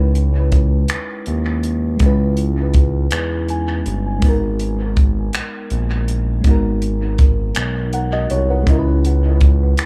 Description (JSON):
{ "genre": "slow six-eight R&B", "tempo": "54 BPM (dotted quarters)", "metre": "6/8", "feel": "straight", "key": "unclear", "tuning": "A4 = 441 Hz", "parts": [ { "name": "mellow FM electric piano", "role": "accompaniment", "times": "0.0-9.9 s", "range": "G#3 to G#5", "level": "-25 LUFS", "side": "equal", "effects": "chorus, phaser, dub echo" }, { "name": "smooth synth bass", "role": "bass", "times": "0.0-9.9 s", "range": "G1 to E2", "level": "-20 LUFS", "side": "equal", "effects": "none" }, { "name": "compact cocktail drum kit", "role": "drums", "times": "0.2-9.9 s", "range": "finger snaps, hi-hat, kick drum", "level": "-19 LUFS", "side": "equal", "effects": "dub echo" } ], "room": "studio ambience", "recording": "echo-heavy mix", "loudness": "-17 LUFS", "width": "mono", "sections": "0.0-9.9 A section", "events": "FM electric piano fill 3.1-4.2", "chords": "0.0 C#m9; 4.2 G#m9; 8.7 C#m9", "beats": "0.89 | 2.00 3.11 | 4.22 5.33 | 6.45 7.56 | 8.67 9.78" }